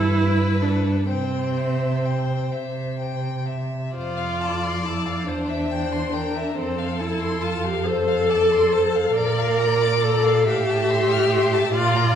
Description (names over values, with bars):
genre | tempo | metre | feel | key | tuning
classical, slow romantic movement for string quartet | 41-48 BPM (dotted quarters) | 6/8 | rubato | C major, F major from 4.0 s | A4 = 439 Hz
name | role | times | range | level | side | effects
rich violin | melody | 0.0-12.2 s | A4 to F6 | -30 LUFS | left 7 dB | none
dark violin | second line | 0.0-12.2 s | A4 to E5 | -29 LUFS | left 3 dB | none
warm viola | accompaniment | 0.0-12.2 s | C4 to Bb4 | -22 LUFS | equal | none
dark cello | bass | 0.0-12.2 s | E2 to C3 | -25 LUFS | right 3 dB | none
room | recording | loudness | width
wet recital hall reverb, RT60 1.4 s | heard from further back in the room | -19 LUFS | side -8 dB against mid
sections
0.0-4.0 A section; 4.0-12.2 B section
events
none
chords
0.0 Gadd9; 1.1 C; 4.0 F; 5.3 C/E; 6.6 F; 9.2 Bb; 10.5 F/A